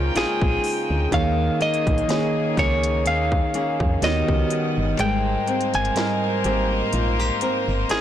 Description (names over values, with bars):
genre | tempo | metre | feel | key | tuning
contemporary R&B | 62 BPM | 4/4 | swing 54% on 16ths | Ab major | A4 = 440 Hz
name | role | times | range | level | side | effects
mellow FM electric piano | accompaniment | 0.0-8.0 s | Ab2 to Eb5 | -27 LUFS | right 2 dB | chorus
clear studio string section | sustained chords | 0.0-8.0 s | Eb3 to G5 | -28 LUFS | left 1 dB | sidechain pumping
flamenco guitar | arpeggios | 0.0-8.0 s | Eb3 to Bb4 | -27 LUFS | left 2 dB | ping-pong delay
solid FM bass | bass | 0.0-8.0 s | G1 to F2 | -24 LUFS | equal | none
direct-recorded clean electric guitar | melody | 0.2-8.0 s | Ab4 to Ab5 | -24 LUFS | equal | ping-pong delay
trap drum kit | drums | 0.2-8.0 s | hi-hat, kick drum, snare drum | -26 LUFS | equal | none
room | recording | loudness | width
little or no reverb | blown-out, overdriven recording, overdrive | -19 LUFS | side -10 dB against mid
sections
0.0-8.0 A section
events
kick muted 5.0-8.0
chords
0.0 Bbm11; 1.1 Eb7sus4; 4.0 Eb7alt; 5.0 Abmaj9